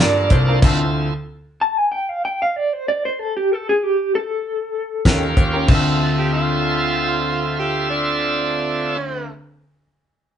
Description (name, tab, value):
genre	straight-eighth soul blues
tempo	95 BPM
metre	4/4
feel	straight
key	D minor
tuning	A4 = 439 Hz
part	electric guitar through a small old amp	melody	0.0-5.4 s	G4 to A5	-19 LUFS	equal	tremolo
part	bright tonewheel organ	accompaniment	0.0-1.1, 5.1-9.0 s	Bb3 to E5	-22 LUFS	right 3 dB	overdrive, slow rotary speaker
part	electric guitar through a small old amp	stabs	0.0-0.8, 5.1-9.4 s	D3 to Bb4	-26 LUFS	left 3 dB	none
part	bright concert grand piano	bass	0.0-1.1, 5.1-9.3 s	C2 to G2	-22 LUFS	left 1 dB	none
part	damped 70s drum kit	drums	0.0-0.8, 5.1-5.8 s	crash cymbal, hi-hat, kick drum, snare drum	-17 LUFS	equal	none
part	overdriven harmonica	second line	6.0-9.3 s	D4 to A4	-24 LUFS	right 3 dB	none
room	moderate studio reverb, RT60 0.8 s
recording	band playing live in one room, nothing above 10.9 kHz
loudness	-17 LUFS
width	side -9 dB against mid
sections	0.0-5.7 A section; 5.7-8.2 B section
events	stop 0.6-5.1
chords	0.0 Gm7; 0.6 Dm7; 5.1 Eb7; 5.7 Dm7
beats	0.00 | 0.63 1.27 1.90 2.53 | 3.16 3.79 4.43 5.06 | 5.69 6.32 6.95 7.58